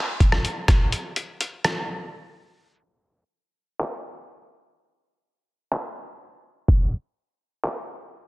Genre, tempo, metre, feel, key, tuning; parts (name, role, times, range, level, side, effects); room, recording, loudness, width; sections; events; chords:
hip hop; 125 BPM; 4/4; half-time
trip hop sampler-style drum kit; drums; 0.2-7.8 s; handclaps, hi-hat, kick drum, rim click; -21 LUFS; equal
little or no reverb; dense, heavily limited modern master, low-pass filter; -22 LUFS; side -21 dB against mid
0.0-2.8 A section; 2.8-8.3 B section
break 1.9-2.8